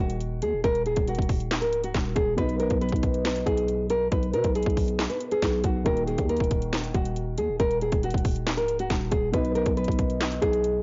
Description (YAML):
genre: hip hop, trap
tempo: 138 BPM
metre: 4/4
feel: half-time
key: Eb minor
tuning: A4 = 444 Hz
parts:
  - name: nylon-string guitar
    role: melody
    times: 0.0-10.8 s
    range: Gb4 to B4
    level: -29 LUFS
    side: equal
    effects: low-pass filter, tape echo
  - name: dark concert grand piano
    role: accompaniment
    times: 0.0-10.8 s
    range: B2 to Gb4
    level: -37 LUFS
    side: equal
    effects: low-pass filter
  - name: growling 808-style bass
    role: bass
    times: 0.0-10.8 s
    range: Db1 to B2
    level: -32 LUFS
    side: equal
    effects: none
  - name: trap drum kit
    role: drums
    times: 0.1-10.7 s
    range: handclaps, hi-hat, kick drum, snare drum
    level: -30 LUFS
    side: equal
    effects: none
room: light reverb, small room reverb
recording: blown-out, overdriven recording, overdrive, nothing above 7.5 kHz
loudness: -26 LUFS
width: mono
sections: 0.0-10.8 A section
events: none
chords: 0.0 Ebm; 2.4 B; 5.9 Ebm; 9.3 B